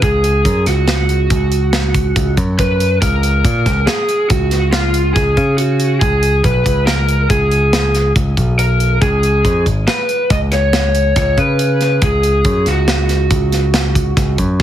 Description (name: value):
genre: progressive instrumental, band music in an uneven meter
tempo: 140 BPM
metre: 7/4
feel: straight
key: Db mixolydian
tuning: A4 = 439 Hz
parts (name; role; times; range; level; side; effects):
- lead guitar through a small cranked amp; melody; 0.0-14.4 s; F4 to Eb5; -16 LUFS; right 1 dB; overdrive
- modern bright picked electric bass; bass; 0.0-14.6 s; Ab1 to Db3; -15 LUFS; equal; none
- modern studio drum kit; drums; 0.0-14.6 s; hi-hat, kick drum, snare drum; -18 LUFS; equal; none
room: little or no reverb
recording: heavily compressed radio sound, multiband compression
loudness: -12 LUFS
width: side -10 dB against mid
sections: 0.0-14.6 A section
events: none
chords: 0.0 N.C.; 3.0 Gb/Db; 6.0 Abmadd11/Cb; 9.0 Db7(no3); 12.0 Dbsus4